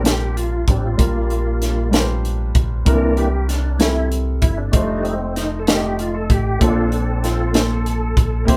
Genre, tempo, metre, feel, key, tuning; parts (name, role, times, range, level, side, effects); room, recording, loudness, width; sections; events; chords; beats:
slow gospel; 64 BPM (dotted quarters); 6/8; straight; Bb major; A4 = 437 Hz
dark upright piano; accompaniment; 0.0-8.6 s; Bb2 to Eb5; -26 LUFS; equal
bright tonewheel organ; sustained chords; 0.0-8.6 s; E3 to Bb4; -26 LUFS; equal; slow rotary speaker, chorus vibrato
fingered electric bass; bass; 0.0-8.6 s; F1 to C2; -24 LUFS; equal
crisp fusion drum kit; drums; 0.1-8.6 s; hi-hat, kick drum, snare drum; -20 LUFS; equal
moderate small room reverb, RT60 0.5 s; band playing live in one room; -19 LUFS; mono
0.0-8.6 A section
tonewheel organ solo 0.0-8.6
0.0 Bb6; 1.0 Gm7/Bb; 2.9 C7; 4.7 F7; 6.6 Bbmaj7
0.05 | 0.99 1.93 | 2.87 3.81 | 4.75 5.68 | 6.62 7.55 | 8.48